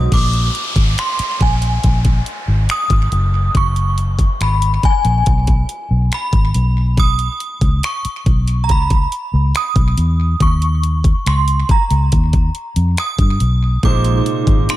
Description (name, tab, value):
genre	contemporary R&B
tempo	70 BPM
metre	4/4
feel	straight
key	G# minor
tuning	A4 = 440 Hz
part	synth chime	melody	0.0-14.8 s	G#5 to D#6	-21 LUFS	right 1 dB	ensemble chorus, phaser, tape echo
part	clear grand piano	accompaniment	0.0-0.1, 13.8-14.8 s	G#2 to D#5	-22 LUFS	right 5 dB	tape echo
part	warm analog pad	sustained chords	0.0-0.1, 13.8-14.8 s	B#2 to D#4	-26 LUFS	right 2 dB	chorus, sidechain pumping
part	vintage muted fingered electric bass	bass	0.0-14.7 s	F#1 to G2	-15 LUFS	equal	none
part	trap drum kit	drums	0.1-14.8 s	crash cymbal, finger snaps, hi-hat, kick drum	-16 LUFS	equal	vintage 12-bit sampler grit
part	downlifter	sound effects	0.1-7.0 s	none	-28 LUFS	left 1 dB	none
room	little or no reverb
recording	echo-heavy mix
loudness	-13 LUFS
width	side -15 dB against mid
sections	0.1-14.8 A section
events	none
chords	0.1 G#sus2; 3.1 F#sus24; 6.5 Bsus2; 10.4 D#5; 13.8 A#9sus4